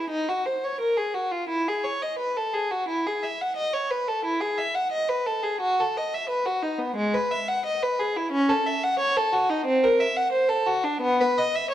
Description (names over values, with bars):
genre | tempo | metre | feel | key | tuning
classical, baroque-style suite movement for unaccompanied violin | 88 BPM | 4/4 | rubato | C# minor | A4 = 440 Hz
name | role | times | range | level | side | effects
rich violin | solo | 0.0-11.7 s | G#3 to F#5 | -22 LUFS | equal | none
room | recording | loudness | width
wet recital hall reverb, RT60 1.6 s | dark, warm production | -22 LUFS | side -12 dB against mid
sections
0.0-11.7 A section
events
none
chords
none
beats
| 0.09 0.80 1.49 2.18 | 2.88 3.56 4.25 4.92 | 5.61 6.29 6.96 7.64 | 8.32 8.99 9.65 10.32 | 11.01 11.71